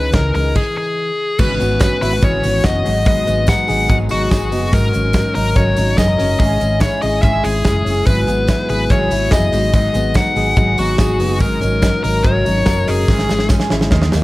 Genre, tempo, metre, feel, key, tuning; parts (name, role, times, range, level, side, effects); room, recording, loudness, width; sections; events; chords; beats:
jangly indie pop; 144 BPM; 4/4; straight; G# minor; A4 = 440 Hz
dark smooth lead guitar; melody; 0.0-13.5 s; F#4 to F#5; -19 LUFS; left 2 dB; overdrive
fingerpicked twelve-string acoustic guitar; accompaniment; 0.0-14.2 s; G#2 to A#4; -23 LUFS; right 4 dB
direct-recorded clean electric guitar; arpeggios; 0.0-14.2 s; G#2 to A#4; -21 LUFS; left 3 dB; spring reverb
hollow-body short-scale fingered electric bass; bass; 0.0-14.2 s; F#1 to D#2; -20 LUFS; equal
modern studio drum kit; drums; 0.1-14.2 s; crash cymbal, hi-hat, kick drum, snare drum; -17 LUFS; equal
tambourine; percussion; 1.4-14.2 s; -38 LUFS; right 6 dB
light reverb; vinyl crackle; -13 LUFS; side -18 dB against mid
0.0-1.4 A section; 1.4-14.2 B section
stop 0.6-1.4; drum fill 13.1-14.2
0.0 C#madd9; 1.4 F#7sus4/G#; 2.9 G#m7; 4.7 D#m7/G#; 6.4 C#m/G#; 8.1 F#7sus4/G#; 9.5 G#m7; 11.4 D#m7/G#; 13.1 C#m/G#
0.14 0.56 0.97 | 1.39 1.81 2.22 2.64 | 3.06 3.48 3.89 4.31 | 4.73 5.14 5.56 5.98 | 6.40 6.81 7.23 7.65 | 8.07 8.48 8.90 9.32 | 9.74 10.16 10.58 10.99 | 11.41 11.83 12.25 12.67 | 13.09 13.51 13.93